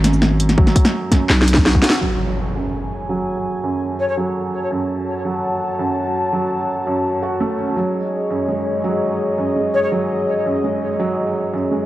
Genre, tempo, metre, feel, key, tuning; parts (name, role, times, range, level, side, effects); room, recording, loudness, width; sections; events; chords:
half-time drum and bass; 167 BPM; 4/4; half-time; F# dorian; A4 = 440 Hz
felt-muted upright piano; arpeggios; 0.0-11.9 s; F#2 to F#4; -22 LUFS; right 3 dB; low-pass filter, tape echo
growling 808-style bass; bass; 0.0-1.8 s; G#1 to B1; -16 LUFS; equal; tube saturation
drum and bass drum kit; drums; 0.0-2.0 s; handclaps, hi-hat, shaker, snare drum; -17 LUFS; equal; overdrive, low-pass filter on snare, low-pass filter on hats, low-pass filter on perc, low-pass filter on room
electronic kick drum; drums; 0.6-1.8 s; -14 LUFS; equal; overdrive
dark analog pad; sustained chords; 2.0-11.9 s; F#4 to A5; -22 LUFS; left 1 dB; chorus, sidechain pumping
impact; sound effects; 2.0-3.5 s; -25 LUFS; equal
jazz flute; melody; 4.0-4.1, 9.7-9.9 s; C#5; -23 LUFS; left 3 dB; tape echo
light reverb; dry, gritty hardware recording, cassette tape; -16 LUFS; side -15 dB against mid
0.0-2.0 A section; 2.0-11.9 B section
drum fill 1.3-2.0; band accent 1.9; impact 2.0-3.5; filter sweep on felt piano 2.0-11.9
0.0 N.C.; 2.0 F#m; 7.8 C#sus2